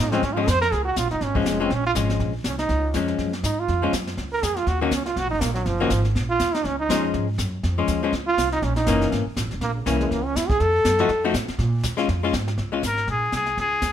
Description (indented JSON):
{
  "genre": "jazz, small-group swing and bop",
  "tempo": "243 BPM",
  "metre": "4/4",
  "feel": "swing 57% on 8ths",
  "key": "Bb minor",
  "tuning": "A4 = 440 Hz",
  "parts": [
    { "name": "brilliant trombone", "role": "second line", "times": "0.0-11.3 s", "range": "Db3 to C5", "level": "-24 LUFS", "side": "right 3 dB", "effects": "none" },
    { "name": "upright bass", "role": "bass", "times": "0.0-13.9 s", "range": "Fb1 to Bb2", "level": "-26 LUFS", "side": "right 1 dB", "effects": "none" },
    { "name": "archtop guitar, miked and amplified", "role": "accompaniment", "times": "0.1-12.8 s", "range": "Eb3 to Gb4", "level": "-24 LUFS", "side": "left 6 dB", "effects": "none" },
    { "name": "jazz brush drum kit", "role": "drums", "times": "0.1-13.9 s", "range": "brushed snare drum, hi-hat, kick drum, snare drum", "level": "-28 LUFS", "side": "left 1 dB", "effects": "none" },
    { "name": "trumpet with straight mute", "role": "melody", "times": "12.9-13.9 s", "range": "Ab4 to Bb4", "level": "-22 LUFS", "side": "left 2 dB", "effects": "none" }
  ],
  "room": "moderate studio reverb, RT60 0.8 s",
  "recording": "none",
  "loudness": "-20 LUFS",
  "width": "side -10 dB against mid",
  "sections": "0.7-12.6 A section; 12.6-13.9 B section",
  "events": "trombone solo 0.0-12.6",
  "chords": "0.0 Bbm7 (rootless); 0.7 Bbm7; 4.7 Ebm7; 6.7 Dbmaj9; 8.6 Gb7; 10.6 F7b9; 11.6 Bbm7",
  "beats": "0.23 0.48 | 0.72 0.97 1.22 1.47 | 1.71 1.96 2.21 2.45 | 2.70 2.95 3.19 3.44 | 3.69 3.93 4.18 4.43 | 4.67 4.92 5.17 5.42 | 5.66 5.91 6.16 6.40 | 6.65 6.90 7.14 7.39 | 7.64 7.89 8.13 8.38 | 8.63 8.88 9.12 9.37 | 9.62 9.86 10.11 10.36 | 10.61 10.85 11.10 11.35 | 11.59 11.84 12.09 12.33 | 12.58 12.83 13.08 13.32 | 13.57 13.82"
}